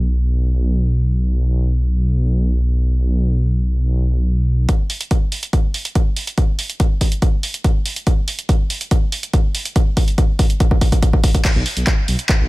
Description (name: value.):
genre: driving peak-time techno.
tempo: 142 BPM.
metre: 4/4.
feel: straight.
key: unclear.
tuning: A4 = 440 Hz.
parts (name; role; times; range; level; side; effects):
dark detuned saw bass; bass; 0.0-4.7, 11.6-12.5 s; B1; -15 LUFS; equal; tube saturation, sidechain pumping.
electronic kick drum; drums; 4.7-12.4 s; none; -15 LUFS; equal; none.
punchy analog drum machine; drums; 4.7-12.4 s; crash cymbal, handclaps, hi-hat; -23 LUFS; right 1 dB; none.
room: digital ambience.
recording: none.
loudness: -15 LUFS.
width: side -20 dB against mid.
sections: 0.0-4.7 A section; 4.7-11.4 B section; 11.4-12.5 C section.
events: build-up 4.7-11.4; drum fill 8.1-11.4; drop 11.4-12.5.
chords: none.